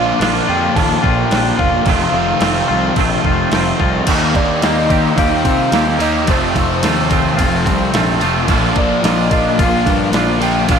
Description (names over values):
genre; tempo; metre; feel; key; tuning
rock, shoegaze and dream pop; 109 BPM; 4/4; straight; F mixolydian; A4 = 440 Hz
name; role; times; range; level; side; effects
soft octave-layered synth lead; melody; 0.0-10.8 s; C5 to A5; -21 LUFS; equal; chorus, ping-pong delay
twangy electric guitar; arpeggios; 0.0-10.8 s; Eb3 to G4; -24 LUFS; left 6 dB; wide subtle chorus, ping-pong delay
distorted electric guitar; riff; 0.0-10.8 s; F2 to F4; -22 LUFS; equal; overdrive
thick fuzz guitar; riff; 0.0-10.8 s; F2 to Eb4; -20 LUFS; left 9 dB; distortion, wide subtle chorus
twangy electric guitar; riff; 0.0-10.8 s; F2 to G4; -20 LUFS; right 10 dB; reverse reverb
fuzz picked electric bass; bass; 0.0-10.8 s; F1 to C3; -19 LUFS; right 1 dB; overdrive
crisp 8-bit digital drum machine; drums; 0.2-10.8 s; crash cymbal, kick drum, ride cymbal, snare drum; -19 LUFS; right 1 dB; none
room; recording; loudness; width
moderate plate reverb, RT60 2.1 s; dreamy mix soaked in reverb; -12 LUFS; side -7 dB against mid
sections
0.0-4.1 A section; 4.1-10.8 B section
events
none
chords
0.0 Bb; 1.9 F7; 4.1 Eb6; 6.3 F; 8.5 Bbmaj7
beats
0.21 0.76 1.32 | 1.87 2.42 2.98 3.53 | 4.08 4.63 5.19 5.74 | 6.29 6.84 7.39 7.94 | 8.49 9.04 9.59 10.14 | 10.69